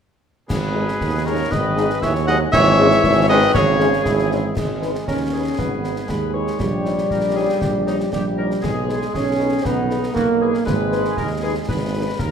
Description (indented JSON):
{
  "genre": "military-style march for wind band",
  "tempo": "118 BPM",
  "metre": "2/4",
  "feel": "straight",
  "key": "G# minor",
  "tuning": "A4 = 440 Hz",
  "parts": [
    { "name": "mellow cornet", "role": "melody", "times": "0.5-12.2 s", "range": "E4 to F#5", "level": "-24 LUFS", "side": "equal", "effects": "none" },
    { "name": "warm euphonium", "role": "second line", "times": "0.5-4.5 s", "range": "B2 to F#3", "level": "-24 LUFS", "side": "right 2 dB", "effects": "none" },
    { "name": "warm woodwind section", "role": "second line", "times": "0.5-12.3 s", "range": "D#4 to D#5", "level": "-25 LUFS", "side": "left 3 dB", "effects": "none" },
    { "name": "clear tuba", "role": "bass", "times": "0.5-12.3 s", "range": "G#1 to D#2", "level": "-23 LUFS", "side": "right 3 dB", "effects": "none" },
    { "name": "concert snare drum, clash cymbals and concert bass drum", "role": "drums", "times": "0.5-12.3 s", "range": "none", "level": "-27 LUFS", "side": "left 1 dB", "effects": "none" },
    { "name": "mellow French horn section", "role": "accompaniment", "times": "0.8-12.0 s", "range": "G#3 to C#5", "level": "-27 LUFS", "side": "left 4 dB", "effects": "none" },
    { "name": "mellow trombone section", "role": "sustained chords", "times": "0.8-12.2 s", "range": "G#2 to D#4", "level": "-23 LUFS", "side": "right 1 dB", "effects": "none" }
  ],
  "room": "wet recital hall reverb, RT60 1.5 s",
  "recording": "none",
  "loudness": "-17 LUFS",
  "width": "side -7 dB against mid",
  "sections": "0.5-4.6 A section; 4.6-12.3 B section",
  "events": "none",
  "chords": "0.5 G#m; 2.5 C#m/G#; 4.6 G#m; 6.6 D#7/A#; 8.6 G#m/B; 10.7 G#m"
}